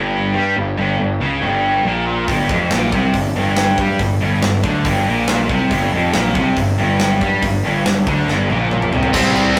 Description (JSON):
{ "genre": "hard rock", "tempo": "140 BPM", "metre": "4/4", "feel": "straight", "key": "G minor", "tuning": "A4 = 440 Hz", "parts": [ { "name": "crunchy overdriven guitar", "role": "riff", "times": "0.0-9.6 s", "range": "F2 to C4", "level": "-21 LUFS", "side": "equal", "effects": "spring reverb" }, { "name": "scooped high-gain guitar", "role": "riff", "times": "0.0-9.6 s", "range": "F2 to C4", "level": "-23 LUFS", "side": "equal", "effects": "distortion" }, { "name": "fuzz picked electric bass", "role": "bass", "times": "0.0-9.5 s", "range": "F1 to G2", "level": "-23 LUFS", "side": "equal", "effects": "overdrive" }, { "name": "huge arena drum kit", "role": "drums", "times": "2.3-9.6 s", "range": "crash cymbal, hi-hat, kick drum, ride cymbal, snare drum, toms", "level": "-23 LUFS", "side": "equal", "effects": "none" }, { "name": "high-gain distorted guitar", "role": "riff", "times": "9.1-9.6 s", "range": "C3 to C4", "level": "-20 LUFS", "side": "equal", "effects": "distortion" } ], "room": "moderate stone room reverb, RT60 0.9 s", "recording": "rough rehearsal-room recording, warm saturation", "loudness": "-17 LUFS", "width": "mono", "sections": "0.0-9.2 A section", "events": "drum fill 8.3-9.2", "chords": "0.0 Gm", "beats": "0.14 | 0.57 0.99 1.42 1.85 | 2.28 2.71 3.14 3.57 | 4.00 4.43 4.86 5.29 | 5.72 6.15 6.58 7.00 | 7.43 7.86 8.29 8.72 | 9.15 9.58" }